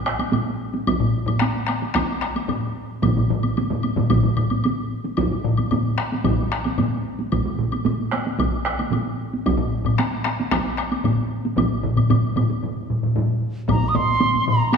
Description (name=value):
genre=japanese traditional, taiko drum ensemble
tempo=112 BPM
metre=4/4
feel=straight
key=unclear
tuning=A4 = 440 Hz
part: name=taiko ensemble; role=percussion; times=0.1-13.3 s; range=none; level=-24 LUFS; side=right 4 dB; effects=none
part: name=woodblock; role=percussion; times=0.1-14.8 s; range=none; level=-32 LUFS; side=left 4 dB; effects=none
part: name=taiko ensemble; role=percussion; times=0.2-14.8 s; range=none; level=-25 LUFS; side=right 2 dB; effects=none
part: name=taiko ensemble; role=percussion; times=0.9-13.8 s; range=none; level=-28 LUFS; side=right 1 dB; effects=none
part: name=taiko ensemble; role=percussion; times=1.0-14.8 s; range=none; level=-23 LUFS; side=left 3 dB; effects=none
part: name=mellow hollow wooden piccolo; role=melody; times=13.7-14.7 s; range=Bb5 to Eb6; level=-20 LUFS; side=right 4 dB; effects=none
room=wet scoring stage reverb, RT60 2.0 s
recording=none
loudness=-19 LUFS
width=side -6 dB against mid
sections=0.0-13.7 A section; 13.7-14.8 B section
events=speeding up 0.0-14.8; stop 12.6-13.7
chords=none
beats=0.32 | 0.86 1.41 1.95 2.49 | 3.03 3.57 4.11 4.64 | 5.18 5.72 6.25 6.79 | 7.32 7.86 8.39 8.92 | 9.46 9.99 10.52 11.05 | 11.58 12.11 12.63 13.16 | 13.69 14.21 14.73